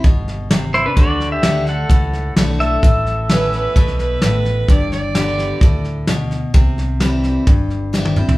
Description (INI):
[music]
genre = honky-tonk and classic country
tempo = 129 BPM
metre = 4/4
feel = straight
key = D major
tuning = A4 = 440 Hz
[part]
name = picked steel-string acoustic guitar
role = accompaniment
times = 0.0-8.4 s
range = G2 to G4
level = -22 LUFS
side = left 1 dB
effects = none
[part]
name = fingered electric bass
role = bass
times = 0.0-8.3 s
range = G1 to D2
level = -22 LUFS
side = equal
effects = none
[part]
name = soft brush drum kit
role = drums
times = 0.0-8.4 s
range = hi-hat, kick drum, snare drum, toms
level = -15 LUFS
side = equal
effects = none
[part]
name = pedal steel guitar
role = melody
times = 0.7-4.4 s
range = D4 to F#5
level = -20 LUFS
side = equal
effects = none
[part]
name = warm fiddle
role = second line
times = 3.3-5.8 s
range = B4 to D5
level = -22 LUFS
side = right 4 dB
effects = none
[sound]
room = moderate large studio reverb, RT60 1.1 s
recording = band playing live in one room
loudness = -14 LUFS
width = side -19 dB against mid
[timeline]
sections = 0.0-8.4 A section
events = drum fill 7.9-8.4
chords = 0.0 C5; 1.0 D; 2.8 Aadd9; 4.7 Gadd9; 6.5 C